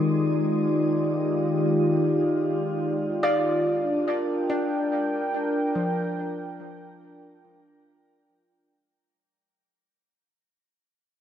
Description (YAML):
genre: ambient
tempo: 71 BPM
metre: 3/4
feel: straight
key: unclear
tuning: A4 = 441 Hz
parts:
  - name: warm analog pad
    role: sustained chords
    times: 0.0-8.7 s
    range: Eb3 to G5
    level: -24 LUFS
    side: equal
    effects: chorus, shimmer reverb
  - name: organ-like drone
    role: drone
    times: 0.0-8.8 s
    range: Ab3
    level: -34 LUFS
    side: right 3 dB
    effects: ensemble chorus, built-in reverb
  - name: soft round pluck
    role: arpeggios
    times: 3.2-7.7 s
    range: F3 to D5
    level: -27 LUFS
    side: left 1 dB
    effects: lush chorus, cassette tape, tape echo, shimmer reverb
room: wet spring reverb, RT60 2.8 s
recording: echo-heavy mix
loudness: -22 LUFS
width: side -9 dB against mid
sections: 0.0-8.7 A section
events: fade-out on synth drone 0.0-8.7; fade-out 2.0-8.7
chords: 0.0 Ebmaj9; 3.7 Gm7